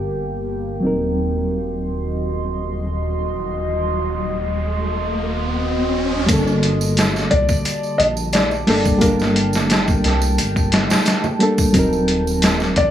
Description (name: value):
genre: trip hop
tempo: 88 BPM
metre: 4/4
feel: straight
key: G harmonic minor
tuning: A4 = 439 Hz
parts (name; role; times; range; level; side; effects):
- reed electric piano; accompaniment; 0.0-12.9 s; D3 to Bb4; -20 LUFS; equal; harmonic tremolo, tape echo
- deep dark ambient pad; sustained chords; 0.0-12.9 s; Bb3 to C6; -26 LUFS; right 2 dB; chorus, built-in reverb
- dark detuned saw bass; bass; 0.0-12.9 s; Eb1 to C2; -24 LUFS; equal; none
- riser; sound effects; 2.9-6.3 s; none; -26 LUFS; left 1 dB; none
- trip hop sampler-style drum kit; drums; 6.3-12.9 s; hi-hat, kick drum, snare drum; -18 LUFS; equal; none
- tambourine and congas; percussion; 6.3-12.7 s; none; -30 LUFS; right 4 dB; none
- felt-muted upright piano; melody; 7.3-12.9 s; Bb4 to Eb5; -22 LUFS; left 2 dB; tape echo
room: light reverb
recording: none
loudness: -16 LUFS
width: side -10 dB against mid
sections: 0.0-6.3 A section; 6.3-12.9 B section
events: riser 2.9-6.3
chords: 0.0 Gmadd9; 0.8 Ebm6; 6.3 Gmadd9; 11.7 Ebm6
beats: 0.15 | 0.83 1.51 2.20 2.88 | 3.56 4.24 4.92 5.61 | 6.29 6.97 7.65 8.33 | 9.02 9.70 10.38 11.06 | 11.74 12.42